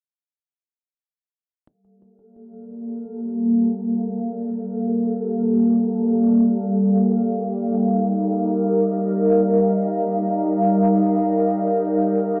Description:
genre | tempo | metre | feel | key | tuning
liquid drum and bass | 174 BPM | 4/4 | straight | G minor | A4 = 438 Hz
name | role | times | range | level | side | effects
ethereal airy pad | sustained chords | 2.8-12.4 s | G3 to F5 | -20 LUFS | equal | ensemble chorus, built-in reverb, phaser
electronic hi-hat | drums | 1.7-12.4 s | none | -61 LUFS | equal | none
room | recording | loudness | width
wet lush hall reverb, RT60 1.8 s | dreamy mix soaked in reverb, low-pass filter | -20 LUFS | mono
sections
1.7-12.4 A section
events
filter sweep 1.7-12.4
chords
1.7 Gm9; 7.2 F9sus4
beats
| 1.68 2.02 2.37 2.71 | 3.06 3.40 3.75 4.09 | 4.43 4.78 5.12 5.47 | 5.81 6.16 6.50 6.85 | 7.19 7.54 7.88 8.23 | 8.57 8.92 9.26 9.61 | 9.95 10.30 10.64 10.99 | 11.33 11.68 12.02 12.37

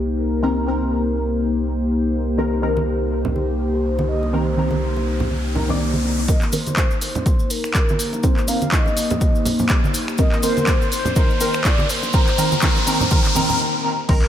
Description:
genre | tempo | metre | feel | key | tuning
deep house | 123 BPM | 4/4 | swing 57% on 16ths | C minor | A4 = 439 Hz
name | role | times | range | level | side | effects
mellow horn-like synth lead | melody | 0.0-14.3 s | G4 to F5 | -28 LUFS | left 1 dB | chorus, diffuse ambient delay
warbly tape-like pad | sustained chords | 0.0-13.6 s | Bb3 to C5 | -25 LUFS | left 2 dB | chorus, built-in reverb, sidechain pumping
round analog bass | bass | 0.0-6.3, 14.1-14.3 s | C2 | -24 LUFS | equal | sidechain pumping
impact and riser | sound effects | 3.4-13.6 s | none | -28 LUFS | equal | none
filtered dub chord stab | stabs | 0.4-14.2 s | Eb3 to D5 | -24 LUFS | equal | phaser, lush chorus, cassette tape, sidechain pumping, diffuse ambient delay
congas and bongos | percussion | 2.8-13.6 s | none | -27 LUFS | right 2 dB | none
electronic kick drum | drums | 6.3-14.2 s | none | -18 LUFS | equal | none
punchy analog drum machine | drums | 6.3-14.3 s | crash cymbal, finger snaps, handclaps, hi-hat | -25 LUFS | equal | none
cabasa | percussion | 6.3-13.6 s | none | -30 LUFS | left 4 dB | none
hi-hat | drums | 14.1-14.2 s | none | barely audible | none | none
room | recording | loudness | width
moderate lush hall reverb, RT60 2.0 s, small room ambience | dreamy mix soaked in reverb | -17 LUFS | side -10 dB against mid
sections
0.0-6.3 A section; 6.3-14.1 B section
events
impact 0.0-0.4; riser 3.5-6.3, 6.3-13.6; build-up 6.3-14.1; filter sweep on synth stab 6.3-14.1; break 13.6-14.1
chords
0.0 Cm7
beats
| 0.43 0.92 1.41 1.89 | 2.38 2.87 3.36 3.85 | 4.33 4.82 5.31 5.80 | 6.28 6.77 7.26 7.75 | 8.23 8.72 9.21 9.70 | 10.19 10.67 11.16 11.65 | 12.14 12.63 13.11 13.60 | 14.09

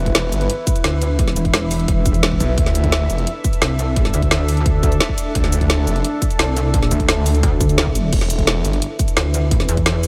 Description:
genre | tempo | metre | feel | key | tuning
dark technical drum and bass | 173 BPM | 4/4 | straight | unclear | A4 = 440 Hz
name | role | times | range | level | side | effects
deep dark ambient pad | sustained chords | 0.0-10.1 s | D4 to E5 | -27 LUFS | equal | chorus, built-in reverb, sidechain pumping
snarling distorted saw bass | bass | 0.0-3.3, 5.4-8.8 s | E1 to D2 | -21 LUFS | equal | distortion, overdrive, sidechain pumping
drum and bass drum kit | drums | 0.1-10.1 s | cabasa, crash cymbal, hi-hat, snare drum | -24 LUFS | equal | overdrive
electronic kick drum | drums | 0.1-9.8 s | none | -22 LUFS | equal | none
pulsing pluck wobble bass | bass | 0.8-10.1 s | E1 to E2 | -21 LUFS | equal | chorus
room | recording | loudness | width
light reverb, digital ambience | none | -17 LUFS | mono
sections
0.0-10.1 A section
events
none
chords
0.0 E5; 2.6 D5; 8.1 E5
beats
0.15 0.50 0.84 | 1.19 1.54 1.88 2.23 | 2.58 2.92 3.27 3.62 | 3.96 4.31 4.66 5.00 | 5.35 5.70 6.04 6.39 | 6.74 7.08 7.43 7.78 | 8.13 8.47 8.82 9.17 | 9.51 9.86

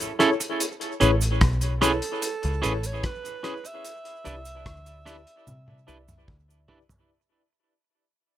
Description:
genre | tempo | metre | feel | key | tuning
lovers rock reggae | 74 BPM | 4/4 | straight | unclear | A4 = 440 Hz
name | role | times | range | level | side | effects
cloth-damped thuddy drum kit | drums | 0.0-7.1 s | hi-hat, kick drum, rim click, toms | -28 LUFS | equal | none
cabasa | percussion | 0.0-7.1 s | none | -35 LUFS | right 8 dB | tape echo
bright tine electric piano | accompaniment | 0.2-6.8 s | E4 to D5 | -28 LUFS | left 2 dB | medium stereo tremolo, tape echo
twangy electric guitar | stabs | 0.2-6.9 s | C#4 to B4 | -26 LUFS | right 3 dB | tape echo
deep dub picked electric bass | bass | 1.0-6.7 s | A1 to C3 | -25 LUFS | equal | none
warm alto saxophone | melody | 1.8-6.3 s | A4 to E5 | -36 LUFS | right 4 dB | none
room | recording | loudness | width
light reverb | none | -22 LUFS | side -12 dB against mid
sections
0.0-7.1 A section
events
fade-out 0.0-7.1; drum fill 5.5-7.1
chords
0.0 F#m7 (rootless); 0.6 Amaj9; 3.8 Cmaj9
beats
| 0.60 1.41 2.22 3.03 | 3.84 4.66 5.47 6.28

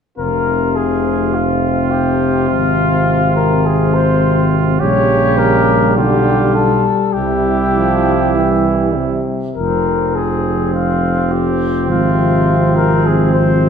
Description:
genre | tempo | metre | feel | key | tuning
classical, brass quintet | 103 BPM | 4/4 | rubato | F minor | A4 = 440 Hz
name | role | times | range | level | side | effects
mellow trumpet | melody | 0.2-13.7 s | F4 to Db5 | -18 LUFS | left 7 dB | none
clear trumpet | second line | 0.2-13.7 s | C4 to G4 | -21 LUFS | right 7 dB | none
bright trombone | accompaniment | 0.2-13.7 s | C3 to F3 | -20 LUFS | right 3 dB | none
mellow French horn | accompaniment | 0.2-13.7 s | F3 to C4 | -19 LUFS | left 3 dB | none
dark tuba | bass | 0.2-13.7 s | F1 to C2 | -17 LUFS | right 2 dB | none
room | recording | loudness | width
wet scoring stage reverb, RT60 1.6 s | dark, warm production | -12 LUFS | side -7 dB against mid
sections
0.2-13.7 A section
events
none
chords
0.2 Fm; 2.5 Fm/Ab; 4.8 Gdim/Bb; 6.0 G7/B; 7.2 C; 9.6 Fm; 11.9 Fm/Ab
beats
| 0.18 0.77 1.35 1.93 | 2.51 3.08 3.66 4.23 | 4.81 5.39 5.97 6.56 | 7.16 7.76 8.36 8.97 | 9.57 10.16 10.74 11.32 | 11.89 12.46 13.04 13.61

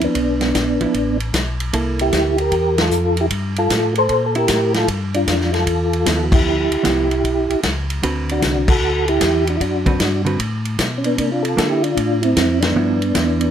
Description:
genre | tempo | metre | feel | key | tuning
soul jazz organ trio | 152 BPM | 4/4 | swing 66% on 8ths | G mixolydian | A4 = 439 Hz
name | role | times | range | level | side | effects
percussive tonewheel organ | melody | 0.0-13.5 s | Bb3 to C5 | -18 LUFS | right 1 dB | slow rotary speaker, chorus vibrato, plate reverb
hollow-body jazz guitar | accompaniment | 0.0-13.5 s | D3 to B4 | -23 LUFS | right 3 dB | none
mellow tonewheel organ | bass | 0.0-13.5 s | A1 to D3 | -22 LUFS | left 1 dB | overdrive, chorus vibrato, slow rotary speaker
vintage drum kit | drums | 0.0-13.5 s | crash cymbal, hi-hat, kick drum, ride cymbal, snare drum | -22 LUFS | left 1 dB | none
room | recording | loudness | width
light reverb | none | -15 LUFS | side -9 dB against mid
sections
0.0-13.5 A section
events
band accent 2.7, 6.3, 8.6, 12.6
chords
0.0 G13 (rootless); 1.7 C13; 4.9 G13; 8.0 D13; 11.2 C13; 12.7 G6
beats
| 0.16 0.55 0.94 1.34 | 1.73 2.12 2.52 2.91 | 3.30 3.70 4.09 4.49 | 4.88 5.27 5.67 6.06 | 6.45 6.85 7.24 7.63 | 8.03 8.42 8.81 9.21 | 9.60 9.99 10.39 10.78 | 11.18 11.57 11.96 12.36 | 12.75 13.14

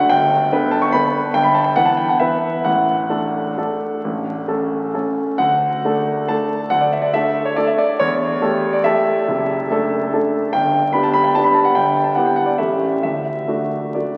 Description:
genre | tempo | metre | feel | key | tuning
classical, piano waltz | 125-156 BPM | 3/4 | rubato | D major | A4 = 440 Hz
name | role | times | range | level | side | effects
clear concert grand piano | solo | 0.0-14.2 s | F#1 to C#6 | -18 LUFS | equal | none
room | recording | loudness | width
wet church reverb, RT60 3.2 s | very old 78 rpm record, vinyl crackle | -18 LUFS | mono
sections
0.0-14.2 A section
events
none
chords
0.1 G; 1.3 Em/G; 2.7 D/A; 4.0 A; 5.4 D; 8.0 A7/E; 9.3 D/F#; 10.5 G; 11.8 Em/G; 12.6 A7; 13.0 D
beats
| 0.10 0.51 0.93 | 1.34 1.76 2.21 | 2.66 3.11 3.58 | 4.04 4.49 4.95 | 5.40 5.84 6.29 | 6.72 7.14 7.58 | 8.00 8.42 8.87 | 9.29 9.71 10.14 | 10.55 10.94 11.36 | 11.76 12.15 12.58 | 13.04 13.48 13.96

